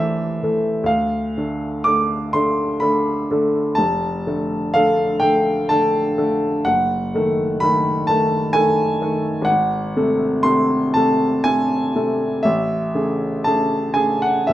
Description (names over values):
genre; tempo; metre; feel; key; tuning
classical, romantic nocturne for solo piano; 62 BPM; 3/4; uneven beats, rubato; unclear; A4 = 440 Hz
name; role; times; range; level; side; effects
warm upright piano; solo; 0.0-14.5 s; F1 to D6; -16 LUFS; equal; none
room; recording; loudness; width
moderate large studio reverb, RT60 1.1 s; none; -16 LUFS; side -14 dB against mid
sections
0.0-14.5 A section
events
none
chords
0.0 Am/C; 0.9 Dm; 3.8 Dm/F; 6.7 D#dim/F#; 9.5 G#7b9; 12.4 Amaj7